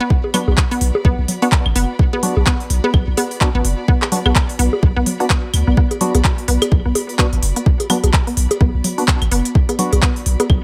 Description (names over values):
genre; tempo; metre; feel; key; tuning
minimal techno; 127 BPM; 4/4; swing 58% on 16ths; B minor; A4 = 439 Hz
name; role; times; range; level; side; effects
resonant blip pluck; riff; 0.0-10.4 s; B3; -25 LUFS; equal; chorus, sidechain pumping, digital delay
warm studio string section; texture; 0.0-10.6 s; B3 to B5; -34 LUFS; equal; sidechain pumping
electronic kick drum; drums; 0.1-10.6 s; none; -17 LUFS; equal; none
bongos, congas and claves; percussion; 0.2-10.6 s; none; -23 LUFS; equal; tape echo
percussive organ stab; stabs; 0.3-9.9 s; B3 to F#4; -27 LUFS; equal; chorus, tape echo
techno drum kit; drums; 0.3-10.5 s; handclaps, hi-hat; -23 LUFS; equal; none
punchy sub bass; bass; 0.5-10.6 s; F#1 to D2; -19 LUFS; equal; sidechain pumping
room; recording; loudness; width
digital ambience; none; -16 LUFS; mono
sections
0.0-10.6 A section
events
none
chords
0.0 Bm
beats
| 0.10 0.58 1.05 1.52 | 1.99 2.46 2.94 3.41 | 3.88 4.36 4.83 5.30 | 5.77 6.25 6.72 7.19 | 7.66 8.13 8.61 9.08 | 9.55 10.02 10.50